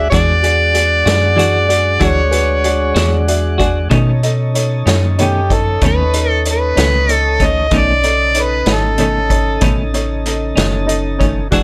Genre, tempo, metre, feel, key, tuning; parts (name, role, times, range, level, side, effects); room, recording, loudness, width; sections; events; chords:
slow blues; 63 BPM (dotted quarters); 12/8; straight; A4 = 441 Hz
overdriven harmonica; melody; 0.0-10.0 s; G4 to D#5; -18 LUFS; equal
clear upright piano; accompaniment; 0.0-11.6 s; D#4 to G#5; -24 LUFS; equal
tonewheel organ; sustained chords; 0.0-11.6 s; C#3 to A4; -25 LUFS; equal; slow rotary speaker
metallic FM bass; bass; 0.0-11.6 s; E1 to B2; -19 LUFS; equal
clean electric guitar; accompaniment; 0.1-11.6 s; B2 to F#4; -21 LUFS; equal; tremolo
vintage drum kit; drums; 0.1-11.6 s; hi-hat, kick drum, snare drum; -21 LUFS; equal
little or no reverb; -14 LUFS; mono
0.0-11.6 A section
upright piano fill 3.0-3.9
0.0 E9; 3.9 B9